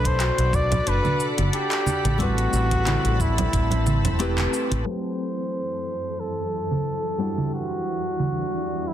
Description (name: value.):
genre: sunset chillout.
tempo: 90 BPM.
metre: 4/4.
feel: swing 54% on 16ths.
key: unclear.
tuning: A4 = 439 Hz.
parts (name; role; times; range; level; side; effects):
warm flugelhorn; melody; 0.0-8.9 s; E4 to D5; -27 LUFS; equal; tape echo.
nylon-string guitar; accompaniment; 0.0-8.9 s; B2 to B4; -31 LUFS; left 1 dB; auto-pan, low-pass filter, tape echo.
shimmering ambient pad; sustained chords; 0.0-8.9 s; E2 to B5; -31 LUFS; equal; chorus, built-in reverb.
Celtic harp; arpeggios; 0.0-6.6 s; G3 to G4; -33 LUFS; left 6 dB; tape echo.
fretless electric bass; bass; 0.0-4.8 s; E1 to B1; -23 LUFS; equal; none.
electronic kick drum; drums; 0.0-3.7 s; none; -25 LUFS; equal; none.
deep house drum kit; drums; 0.1-8.9 s; cabasa, congas, handclaps, hi-hat; -27 LUFS; right 2 dB; overdrive, low-pass filter on hats, low-pass filter on perc, low-pass filter on snare.
congas; percussion; 0.7-4.8 s; none; -29 LUFS; right 3 dB; none.
room: light reverb, small room ambience.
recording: dense, heavily limited modern master, low-pass filter.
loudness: -21 LUFS.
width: side -11 dB against mid.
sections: 0.0-4.9 A section; 4.9-8.9 B section.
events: kick drops out 4.2-4.9; band accent 4.4-4.7; filter sweep on drum 4.9-8.9; filter sweep on nylon-string guitar 4.9-8.9; filter sweep on ambient pad 4.9-8.9; filter sweep 4.9-8.9.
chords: 0.0 Bm7; 1.9 Am9; 4.9 F#m7b5; 7.2 Em7.